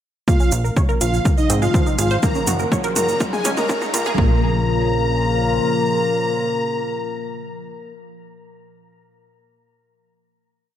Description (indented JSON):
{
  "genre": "melodic techno",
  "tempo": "123 BPM",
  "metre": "4/4",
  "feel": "straight",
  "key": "Bb minor",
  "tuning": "A4 = 440 Hz",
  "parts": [
    { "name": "soft octave-layered synth lead", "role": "melody", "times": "0.3-7.9 s", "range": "Eb4 to Bb4", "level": "-24 LUFS", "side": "left 1 dB", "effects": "chorus, tremolo, tape echo" },
    { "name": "big bright polysynth", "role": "second line", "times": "0.3-7.9 s", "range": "Eb5 to Bb5", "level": "-27 LUFS", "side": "left 1 dB", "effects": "cassette tape, sidechain pumping, dub echo" },
    { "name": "sweeping resonant pad", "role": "sustained chords", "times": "0.3-7.9 s", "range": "C3 to Gb5", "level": "-27 LUFS", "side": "left 3 dB", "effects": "chorus, sidechain pumping" },
    { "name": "wide unison pluck", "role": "arpeggios", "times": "0.3-4.4 s", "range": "Ab3 to Db5", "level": "-26 LUFS", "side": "right 2 dB", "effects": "sidechain pumping, dub echo" },
    { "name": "overtone-sweeping drone", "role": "drone", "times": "1.2-7.9 s", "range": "Bb2 to F3", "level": "-31 LUFS", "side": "left 2 dB", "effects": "chorus, built-in reverb, sidechain pumping" },
    { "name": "electronic kick drum", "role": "drums", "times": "0.3-4.3 s", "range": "none", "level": "-19 LUFS", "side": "equal", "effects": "overdrive" },
    { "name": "house drum kit", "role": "drums", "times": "0.3-4.2 s", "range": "hi-hat, toms", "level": "-26 LUFS", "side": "left 1 dB", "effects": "overdrive" },
    { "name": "egg shaker", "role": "percussion", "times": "0.3-4.2 s", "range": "none", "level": "-28 LUFS", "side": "right 6 dB", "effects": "none" },
    { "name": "riser", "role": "sound effects", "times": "2.1-4.2 s", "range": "none", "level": "-31 LUFS", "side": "right 1 dB", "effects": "none" },
    { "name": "plucky analog bass", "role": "bass", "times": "0.5-5.6 s", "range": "Gb1 to Ab2", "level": "-22 LUFS", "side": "equal", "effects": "sidechain pumping" }
  ],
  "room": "light reverb, digital ambience",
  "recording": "high-pass filter",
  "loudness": "-16 LUFS",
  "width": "side -10 dB against mid",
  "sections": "0.3-4.2 build; 4.2-8.1 final chord",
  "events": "build-up 0.3-4.2; drum fill 0.3-4.2; filter sweep 0.3-4.2",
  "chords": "0.3 Bbm; 1.3 Ab; 2.2 Gb; 3.2 Dbadd9; 4.2 Bbm"
}